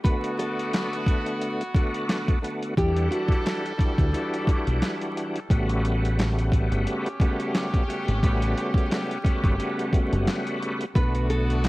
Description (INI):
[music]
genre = hip hop, boom-bap hip-hop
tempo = 88 BPM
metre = 4/4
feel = swing 56% on 16ths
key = B minor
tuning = A4 = 440 Hz
[part]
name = nylon-string guitar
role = melody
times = 0.0-3.6, 11.0-11.7 s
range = F#4 to B4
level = -31 LUFS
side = equal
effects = high-pass filter, low-pass filter, cassette tape, tape echo
[part]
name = bright tonewheel organ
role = accompaniment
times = 0.0-11.7 s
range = C#3 to F#5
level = -28 LUFS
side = equal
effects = chorus vibrato, slow rotary speaker, cassette tape, high-pass filter, low-pass filter
[part]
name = brilliant trumpet section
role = stabs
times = 0.0-11.7 s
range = G3 to A4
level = -34 LUFS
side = equal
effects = high-pass filter, low-pass filter, tape echo
[part]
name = boom bap sampler-style drum kit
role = drums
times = 0.0-11.7 s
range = handclaps, hi-hat, kick drum, snare drum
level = -24 LUFS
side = equal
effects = cassette tape
[part]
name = deep dub fingered electric bass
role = bass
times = 2.8-11.7 s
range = F#1 to E2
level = -24 LUFS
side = equal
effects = none
[sound]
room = digital ambience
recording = home recording on cassette, vinyl crackle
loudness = -22 LUFS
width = side -19 dB against mid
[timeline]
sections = 0.0-11.7 A section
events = break 0.0-2.8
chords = 0.0 Bm7; 2.8 Em9; 5.5 A13; 11.0 Bm7